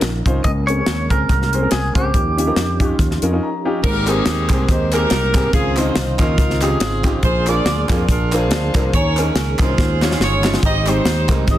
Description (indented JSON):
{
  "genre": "uptempo gospel",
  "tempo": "142 BPM",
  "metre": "4/4",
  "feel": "swing 56% on 8ths",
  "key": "Ab major",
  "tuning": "A4 = 442 Hz",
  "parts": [
    { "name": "clear upright piano", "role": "accompaniment", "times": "0.0-11.4 s", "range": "Ab2 to Bb5", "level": "-23 LUFS", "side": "left 1 dB", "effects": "none" },
    { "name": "percussive tonewheel organ", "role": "sustained chords", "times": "0.0-11.6 s", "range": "Db3 to Bb4", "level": "-26 LUFS", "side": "right 3 dB", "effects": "slow rotary speaker, chorus vibrato" },
    { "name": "fingered electric bass", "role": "bass", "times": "0.0-11.6 s", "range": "G1 to F2", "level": "-21 LUFS", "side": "equal", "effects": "none" },
    { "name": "tight funk drum kit", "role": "drums", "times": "0.0-11.6 s", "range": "crash cymbal, hi-hat, kick drum, snare drum", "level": "-19 LUFS", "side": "equal", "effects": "none" },
    { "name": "clean electric guitar", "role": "melody", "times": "0.4-3.4 s", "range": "G4 to Eb5", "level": "-22 LUFS", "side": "right 2 dB", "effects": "tremolo" },
    { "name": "warm saxophone section", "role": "melody", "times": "3.8-11.6 s", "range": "C4 to Eb5", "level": "-20 LUFS", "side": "equal", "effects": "tape echo" },
    { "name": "group handclap", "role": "percussion", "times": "4.1-11.4 s", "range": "none", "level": "-31 LUFS", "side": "right 4 dB", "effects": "none" }
  ],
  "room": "light reverb, studio ambience",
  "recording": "dense, heavily limited modern master",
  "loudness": "-15 LUFS",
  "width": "side -13 dB against mid",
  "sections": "0.0-3.8 A section; 3.8-11.6 B section",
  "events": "upright piano fill 3.2-3.8; break 3.4-3.8; drum fill 9.8-10.6",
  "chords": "0.5 Bbm9/Db; 2.1 Eb9; 3.8 Abmaj9; 5.5 Dbmaj9; 7.2 Bb7; 8.9 Eb7sus4; 9.8 Eb9sus4; 10.6 Abmaj7"
}